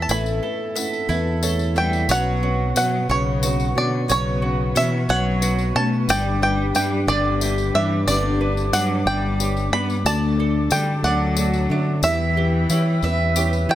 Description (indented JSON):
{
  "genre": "indie folk with a building arrangement",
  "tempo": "60 BPM (dotted quarters)",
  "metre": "6/8",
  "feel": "straight",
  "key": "B minor",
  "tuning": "A4 = 441 Hz",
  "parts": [
    { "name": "bluegrass banjo", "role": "melody", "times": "0.0-13.8 s", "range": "C#5 to B5", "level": "-24 LUFS", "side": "right 1 dB", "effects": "none" },
    { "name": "dark upright piano", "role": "accompaniment", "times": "0.0-13.8 s", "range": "G1 to G5", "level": "-30 LUFS", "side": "right 4 dB", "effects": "none" },
    { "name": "picked twelve-string acoustic guitar", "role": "accompaniment", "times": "0.0-13.8 s", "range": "G2 to A4", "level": "-29 LUFS", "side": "left 4 dB", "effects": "lush chorus" },
    { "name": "mandolin", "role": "arpeggios", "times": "0.0-13.8 s", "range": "B3 to C#6", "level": "-28 LUFS", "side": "right 7 dB", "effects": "slapback echo" },
    { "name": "fingered electric bass", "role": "bass", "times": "0.0-13.8 s", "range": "G1 to E3", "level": "-22 LUFS", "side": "equal", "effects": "none" },
    { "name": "tambourine", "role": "percussion", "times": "0.1-13.6 s", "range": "none", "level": "-29 LUFS", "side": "left 8 dB", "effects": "none" },
    { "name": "warm cello", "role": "second line", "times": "1.8-13.8 s", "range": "C#3 to B3", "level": "-26 LUFS", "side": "left 4 dB", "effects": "none" },
    { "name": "mellow small flute group", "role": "sustained chords", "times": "2.1-13.8 s", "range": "A4 to E6", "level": "-33 LUFS", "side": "left 3 dB", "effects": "none" }
  ],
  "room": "light reverb, small room ambience",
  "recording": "none",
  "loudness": "-18 LUFS",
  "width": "side -13 dB against mid",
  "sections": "0.0-2.1 A section; 2.1-13.8 B section",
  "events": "none",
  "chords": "0.0 Asus2; 2.1 Bsus2; 6.1 G; 10.1 D; 12.0 Em"
}